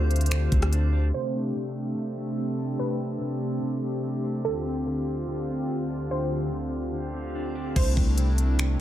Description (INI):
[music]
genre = hip hop, atmospheric cloud-rap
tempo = 145 BPM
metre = 4/4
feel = half-time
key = C major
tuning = A4 = 440 Hz
[part]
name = warbly dusty pluck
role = melody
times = 0.0-8.8 s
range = A4 to C5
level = -34 LUFS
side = right 3 dB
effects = chorus, low-pass filter, ping-pong delay
[part]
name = hollow soft pad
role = sustained chords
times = 0.0-8.8 s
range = D2 to C5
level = -29 LUFS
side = right 1 dB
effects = chorus, sidechain pumping
[part]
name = mellow electric guitar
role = arpeggios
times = 0.0-8.8 s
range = C3 to D5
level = -33 LUFS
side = left 2 dB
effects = low-pass filter, ping-pong delay
[part]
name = long sustained 808-style bass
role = bass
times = 0.0-1.1, 7.8-8.8 s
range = C2 to D2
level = -22 LUFS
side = equal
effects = none
[part]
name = drifting glass-harmonics texture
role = texture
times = 0.0-7.7 s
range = C4 to F5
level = -43 LUFS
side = right 2 dB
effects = chorus, built-in reverb
[part]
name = trap drum kit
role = drums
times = 0.1-0.8, 7.8-8.7 s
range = crash cymbal, finger snaps, hi-hat, kick drum, rim click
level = -26 LUFS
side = equal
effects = none
[sound]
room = little or no reverb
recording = low-pass filter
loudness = -24 LUFS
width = side -12 dB against mid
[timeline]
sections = 0.0-1.1 A section; 1.1-7.8 B section; 7.8-8.8 A section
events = filter sweep 1.1-7.8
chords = 0.0 Dm7; 1.1 C6; 4.5 Dm7; 7.8 C6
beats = 0.31 0.73 | 1.14 1.55 1.97 2.38 | 2.79 3.21 3.62 4.04 | 4.45 4.86 5.28 5.69 | 6.11 6.52 6.93 7.35 | 7.76 8.18 8.59